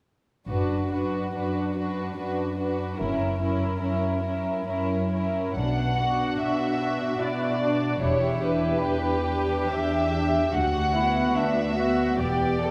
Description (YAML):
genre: classical, slow romantic movement for string orchestra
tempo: 72 BPM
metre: 3/4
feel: uneven beats, rubato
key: B minor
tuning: A4 = 442 Hz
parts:
  - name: warm chamber violin section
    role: melody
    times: 0.5-12.7 s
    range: A#4 to F#5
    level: -32 LUFS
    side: equal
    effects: none
  - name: warm symphonic violin section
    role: second line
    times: 0.5-12.7 s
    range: D4 to A4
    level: -32 LUFS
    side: equal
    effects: none
  - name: dark symphonic viola section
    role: accompaniment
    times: 0.5-12.7 s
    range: B3 to G4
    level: -32 LUFS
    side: equal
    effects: none
  - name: dark chamber cello section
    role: bass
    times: 0.5-12.7 s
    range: D2 to B2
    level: -32 LUFS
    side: equal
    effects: none
  - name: dark chamber double bass section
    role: bass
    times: 0.5-12.7 s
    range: E1 to D2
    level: -35 LUFS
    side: equal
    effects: none
room: wet concert hall reverb, RT60 2.2 s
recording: none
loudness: -26 LUFS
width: mono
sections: 0.5-5.6 A section; 5.6-12.7 B section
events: none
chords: 0.5 Bm/F#; 3.0 F#7; 5.6 Bm; 8.0 Em7; 10.5 Bm/D; 12.2 Em7